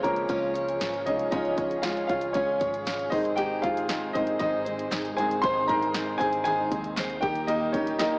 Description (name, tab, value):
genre	piano-driven pop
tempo	117 BPM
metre	4/4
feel	straight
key	Ab major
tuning	A4 = 440 Hz
part	clear upright piano	accompaniment	0.0-8.2 s	Eb3 to C6	-27 LUFS	equal	none
part	dark studio string section	sustained chords	0.0-8.2 s	Bb2 to Ab4	-36 LUFS	equal	none
part	picked steel-string acoustic guitar	riff	0.0-8.2 s	Ab2 to Db5	-29 LUFS	equal	none
part	vintage muted fingered electric bass	bass	0.0-8.2 s	G1 to Eb2	-44 LUFS	equal	none
part	house drum kit	drums	0.0-8.1 s	hi-hat, kick drum, snare drum	-34 LUFS	equal	none
part	group handclap	percussion	3.9-8.1 s	none	-39 LUFS	equal	none
room	moderate plate reverb, RT60 2.0 s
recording	worn, warbling old tape, cassette tape, warbly pitch drift, small speaker sound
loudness	-24 LUFS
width	side -32 dB against mid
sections	0.0-8.2 A section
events	upright piano solo 0.0-8.2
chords	0.0 Db; 3.1 Ab; 7.2 Eb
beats	0.30 0.81 | 1.33 1.84 2.35 2.87 | 3.38 3.89 4.41 4.92 | 5.43 5.94 6.46 6.97 | 7.48 7.99